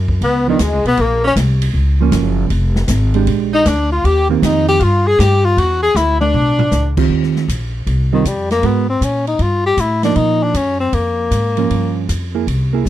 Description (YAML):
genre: jazz, small-group swing and bop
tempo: 157 BPM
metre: 4/4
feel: swing 67% on 8ths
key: Eb major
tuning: A4 = 440 Hz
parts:
  - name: upright bass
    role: bass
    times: 0.0-12.9 s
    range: F1 to Bb2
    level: -16 LUFS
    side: equal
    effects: none
  - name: open jazz drum kit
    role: drums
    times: 0.1-12.9 s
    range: crash cymbal, hi-hat, kick drum, ride cymbal, snare drum, toms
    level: -24 LUFS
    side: equal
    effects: none
  - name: breathy tenor saxophone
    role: melody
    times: 0.2-12.1 s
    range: Eb3 to Ab4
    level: -16 LUFS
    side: left 3 dB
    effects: none
  - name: bright tenor saxophone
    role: second line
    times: 0.2-7.0 s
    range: Eb3 to Ab4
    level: -22 LUFS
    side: right 4 dB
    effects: none
  - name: hollow-body jazz guitar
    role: accompaniment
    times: 0.5-12.8 s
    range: Eb3 to Bb4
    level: -16 LUFS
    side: right 10 dB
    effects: none
room: small room ambience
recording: dry, close 1970s-style studio recording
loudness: -13 LUFS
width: side -13 dB against mid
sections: 0.0-7.1 A section; 7.1-12.9 B section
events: drum fill 6.0-6.7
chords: 0.2 Db7b9; 1.0 Gbmaj7; 2.5 Fm; 3.3 Bb6; 4.0 Eb6; 5.6 E5; 7.1 Eb69; 8.6 Abm9; 9.4 Gm13; 10.2 Gbmaj13; 11.7 Gm7b5